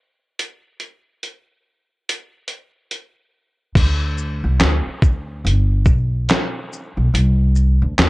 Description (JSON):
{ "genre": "lo-fi hip hop", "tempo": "71 BPM", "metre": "4/4", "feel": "swing 61% on 16ths", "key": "unclear", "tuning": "A4 = 438 Hz", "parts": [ { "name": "dusty soul sampler-style drum kit", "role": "drums", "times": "0.4-8.1 s", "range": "crash cymbal, handclaps, hi-hat, kick drum, shaker, snare drum", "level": "-18 LUFS", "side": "equal", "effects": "none" }, { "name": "upright bass", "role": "bass", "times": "3.8-8.1 s", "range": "G1 to E2", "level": "-17 LUFS", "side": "equal", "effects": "none" } ], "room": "little or no reverb", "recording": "cassette tape", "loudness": "-16 LUFS", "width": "side -21 dB against mid", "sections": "0.0-3.8 A section; 3.8-8.1 B section", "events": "kick muted 0.4-3.8", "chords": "none", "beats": "| 0.38 1.22 2.07 2.91 | 3.76 4.60 5.45 6.29 | 7.14 7.98" }